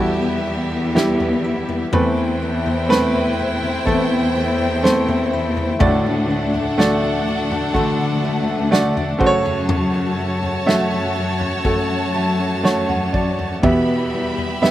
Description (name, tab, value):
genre	pop ballad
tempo	62 BPM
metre	4/4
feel	straight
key	D major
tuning	A4 = 440 Hz
part	warm studio violin section	second line	0.0-14.7 s	B3 to B5	-25 LUFS	equal	slapback echo
part	warm grand piano	accompaniment	0.0-14.7 s	A2 to A5	-20 LUFS	right 2 dB	none
part	fingerpicked steel-string acoustic guitar	arpeggios	0.0-14.7 s	E2 to F#4	-25 LUFS	left 4 dB	none
part	rich symphonic cello section	bass	0.0-14.7 s	D2 to F#2	-23 LUFS	left 1 dB	none
part	natural country drum kit	drums	1.0-14.7 s	kick drum, snare drum, toms	-22 LUFS	equal	none
room	little or no reverb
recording	recorded outdoors, with no room sound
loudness	-16 LUFS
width	side -13 dB against mid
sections	0.0-14.7 A section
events	grand piano fill 11.7-13.6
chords	0.0 Em; 1.9 Amadd9/E; 5.8 D; 9.2 F#m; 13.6 Em